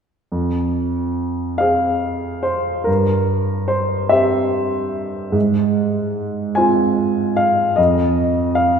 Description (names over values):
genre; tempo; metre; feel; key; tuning
classical, romantic nocturne for solo piano; 48 BPM (dotted quarters); 6/8; rubato; F minor; A4 = 440 Hz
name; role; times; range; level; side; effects
warm baby grand piano; solo; 0.3-8.8 s; F2 to Ab5; -16 LUFS; equal; none
room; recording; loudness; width
wet concert hall reverb, RT60 2.1 s; heard from further back in the room; -16 LUFS; side -6 dB against mid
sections
0.3-8.8 A section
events
none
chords
0.3 Fm; 2.9 C7/G; 5.3 Fm/Ab; 7.8 N.C.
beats
| 0.32 1.61 | 2.87 4.12 | 5.35 6.58 | 7.78